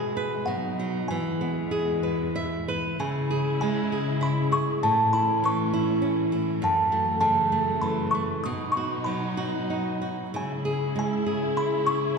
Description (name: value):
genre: children's music, lullaby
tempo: 98 BPM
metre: 3/4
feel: rubato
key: unclear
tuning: A4 = 441 Hz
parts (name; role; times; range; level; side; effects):
- music box; melody; 0.0-12.1 s; F#5 to D#6; -27 LUFS; equal; none
- flamenco guitar; accompaniment; 0.0-12.2 s; F#2 to E5; -27 LUFS; right 1 dB; none
- warm symphonic string section; sustained chords; 0.0-12.2 s; E2 to E4; -31 LUFS; left 3 dB; none
room: wet concert hall reverb, RT60 1.8 s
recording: recorded in a church or concert hall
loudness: -23 LUFS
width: side -5 dB against mid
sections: 0.0-3.0 A section; 3.0-12.2 B section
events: nylon-string guitar fill 2.0-3.0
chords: 0.5 B; 1.1 E; 3.0 C#m; 4.8 A; 6.6 F#m7; 8.4 B; 10.3 C#m